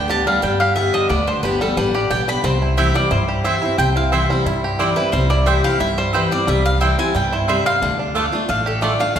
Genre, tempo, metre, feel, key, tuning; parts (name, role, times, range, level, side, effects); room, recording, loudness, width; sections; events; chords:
bluegrass; 179 BPM; 4/4; straight; C major; A4 = 440 Hz
mandolin; melody; 0.0-9.2 s; A4 to B5; -21 LUFS; equal
picked steel-string acoustic guitar; accompaniment; 0.0-9.2 s; G2 to G4; -22 LUFS; left 2 dB
bluegrass banjo; arpeggios; 0.0-9.2 s; G3 to G4; -24 LUFS; right 2 dB
upright bass; bass; 0.0-9.2 s; G1 to G2; -21 LUFS; equal
mandolin; stabs; 2.8-8.9 s; A3 to A5; -24 LUFS; right 3 dB
wet recital hall reverb, RT60 1.7 s; recorded in a church or concert hall; -15 LUFS; side -9 dB against mid
0.0-9.2 A section
0.0 G/D; 2.4 C; 7.8 Dm